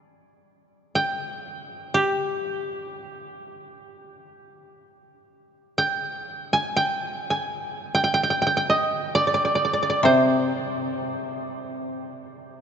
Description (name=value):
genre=japanese traditional, Japanese chamber music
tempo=free time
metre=none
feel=none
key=G miyako bushi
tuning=A4 = 440 Hz
part: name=koto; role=melody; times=1.0-11.8 s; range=G4 to Ab5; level=-23 LUFS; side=right 1 dB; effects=none
part: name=koto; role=accompaniment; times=10.0-12.6 s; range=C3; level=-23 LUFS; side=left 1 dB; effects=none
room=wet cathedral reverb, RT60 7.0 s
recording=nothing above 7.6 kHz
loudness=-22 LUFS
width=side -8 dB against mid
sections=0.0-4.5 A section; 4.5-12.6 A section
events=none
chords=none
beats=free time